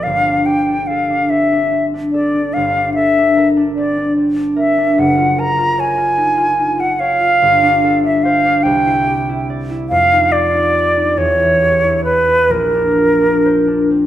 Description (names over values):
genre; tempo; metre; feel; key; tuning
classical, impressionist duo for flute and harp; 43-50 BPM (dotted quarters); 6/8; rubato; unclear; A4 = 440 Hz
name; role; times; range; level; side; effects
bright concert flute; melody; 0.0-13.9 s; Bb4 to Bb5; -14 LUFS; equal; none
concert harp; accompaniment; 0.0-14.1 s; Gb1 to D5; -16 LUFS; equal; none
room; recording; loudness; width
moderate recital hall reverb, RT60 1.4 s; none; -12 LUFS; side -12 dB against mid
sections
0.0-14.1 A section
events
none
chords
0.0 Gmadd9; 5.0 Gbmaj7; 7.4 Gm11; 8.6 Cadd9; 9.9 Fsus2; 11.2 Em6; 12.5 Bbadd9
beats
| 0.03 1.29 | 2.55 3.76 | 4.98 6.20 | 7.43 8.65 | 9.90 11.18 | 12.51 13.90